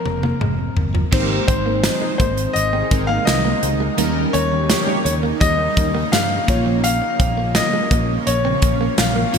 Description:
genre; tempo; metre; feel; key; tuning
1980s-style pop; 84 BPM; 4/4; straight; unclear; A4 = 440 Hz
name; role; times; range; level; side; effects
bright concert grand piano; melody; 0.0-9.4 s; Bb4 to F5; -22 LUFS; left 3 dB; digital delay
glassy digital keys; accompaniment; 0.0-9.4 s; F3 to Db5; -25 LUFS; right 1 dB; chorus
fretless electric bass; bass; 0.1-9.4 s; F1 to G2; -23 LUFS; equal; none
modern studio drum kit; drums; 0.1-9.4 s; crash cymbal, hi-hat, kick drum, snare drum, tambourine, toms; -20 LUFS; equal; gated reverb
direct-recorded clean electric guitar; riff; 0.2-9.4 s; F3 to Db4; -28 LUFS; right 5 dB; lush chorus, digital delay
shimmering ambient pad; sustained chords; 2.1-9.4 s; C3 to Eb4; -26 LUFS; right 1 dB; chorus, built-in reverb
mellow synth brass; stabs; 1.1-5.9 s; Eb3 to Db5; -28 LUFS; left 1 dB; chorus
room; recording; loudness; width
moderate lush hall reverb, RT60 2.8 s; bright 1980s-style digital production; -16 LUFS; side -6 dB against mid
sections
0.0-1.1 A section; 1.1-9.4 B section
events
drum fill 0.0-1.1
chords
0.0 Fsus4; 1.1 Ab; 4.0 Eb7; 6.5 Bbm

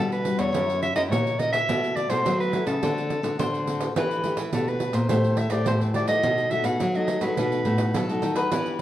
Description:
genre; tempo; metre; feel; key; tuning
samba and choro; 105 BPM; 4/4; straight; unclear; A4 = 440 Hz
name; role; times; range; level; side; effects
mellow soprano saxophone; melody; 0.0-8.2 s; A4 to F#5; -26 LUFS; equal; none
nylon-string guitar; accompaniment; 0.0-8.8 s; A2 to C5; -29 LUFS; left 2 dB; none
nylon-string guitar; bass; 0.0-8.8 s; E2 to F#3; -27 LUFS; equal; none
pandeiro; percussion; 0.1-8.8 s; none; -30 LUFS; right 4 dB; none
bowl-back mandolin; second line; 3.4-4.4, 8.0-8.8 s; A4 to C5; -29 LUFS; left 2 dB; none
room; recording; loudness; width
wet large studio reverb, RT60 1.3 s; worn, warbling old tape, cassette tape, warbly pitch drift; -22 LUFS; side -12 dB against mid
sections
0.0-8.8 A section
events
none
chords
0.0 Em9; 0.5 F#7; 1.7 B7sus4; 2.8 D7; 4.0 Em7; 5.1 Am7; 6.2 B7

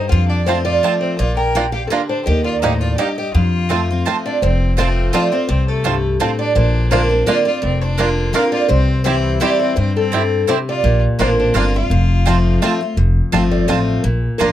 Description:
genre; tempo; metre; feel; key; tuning
bluegrass; 168 BPM; 3/4; straight; F mixolydian, F major from 4.4 s; A4 = 441 Hz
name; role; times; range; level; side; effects
picked old ladder-braced acoustic guitar; melody; 0.0-14.5 s; A4 to G5; -21 LUFS; right 1 dB; none
clear fiddle; second line; 0.0-12.6 s; A3 to Bb4; -25 LUFS; left 3 dB; none
picked steel-string acoustic guitar; accompaniment; 0.0-14.5 s; F2 to F4; -19 LUFS; left 2 dB; none
upright bass; bass; 0.1-14.5 s; F1 to G2; -17 LUFS; equal; none
bluegrass banjo; melody; 0.5-14.5 s; Bb3 to G4; -22 LUFS; right 4 dB; none
mandolin; stabs; 0.5-14.5 s; Bb3 to C6; -21 LUFS; right 7 dB; none
room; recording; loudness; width
moderate booth ambience, RT60 0.2 s; none; -14 LUFS; side -12 dB against mid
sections
0.0-4.4 A section; 4.4-13.0 B section; 13.0-14.5 C section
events
none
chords
0.1 F; 1.2 Bb; 2.3 Eb; 3.3 F; 6.6 Bbadd9; 8.7 C; 10.8 Bbadd9; 11.9 F

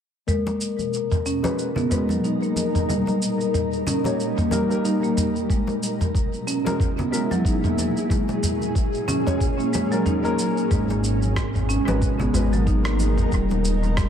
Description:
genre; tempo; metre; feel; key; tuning
organic downtempo; 92 BPM; 4/4; swing 57% on 16ths; G# minor; A4 = 438 Hz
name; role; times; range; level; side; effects
granular cloud pad; sustained chords; 0.8-14.1 s; A#2 to A#4; -27 LUFS; equal; built-in reverb, sidechain pumping, shimmer reverb
marimba with soft mallets; arpeggios; 0.3-14.0 s; F#3 to D#4; -25 LUFS; right 1 dB; low-pass filter, analog delay, shimmer reverb
dusty soul sampler-style drum kit; drums; 0.3-14.1 s; rim click, shaker, toms; -28 LUFS; equal; none
bronze singing bowl; texture; 0.3-10.7 s; A#3 to A#4; -34 LUFS; left 8 dB; none
congas; percussion; 0.5-13.9 s; none; -32 LUFS; left 2 dB; analog delay
felt-muted upright piano; accompaniment; 1.4-12.5 s; G#3 to C#5; -30 LUFS; left 3 dB; sidechain pumping, low-pass filter, analog delay, shimmer reverb
electronic kick drum; drums; 5.5-14.1 s; none; -23 LUFS; equal; none
smooth synth bass; bass; 10.7-14.1 s; D#1 to G#1; -23 LUFS; equal; sidechain pumping
room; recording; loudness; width
moderate spring reverb, RT60 1.6 s, small room ambience; echo-heavy mix; -20 LUFS; side -8 dB against mid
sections
0.3-10.7 A section; 10.7-14.1 B section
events
filter sweep on felt piano 0.3-10.7; filter sweep on ambient pad 0.3-10.7; kick drops out 10.1-10.7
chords
0.3 G#madd9; 2.9 D#; 5.5 Eadd9; 8.1 F#add9; 10.7 G#madd9; 13.3 D#

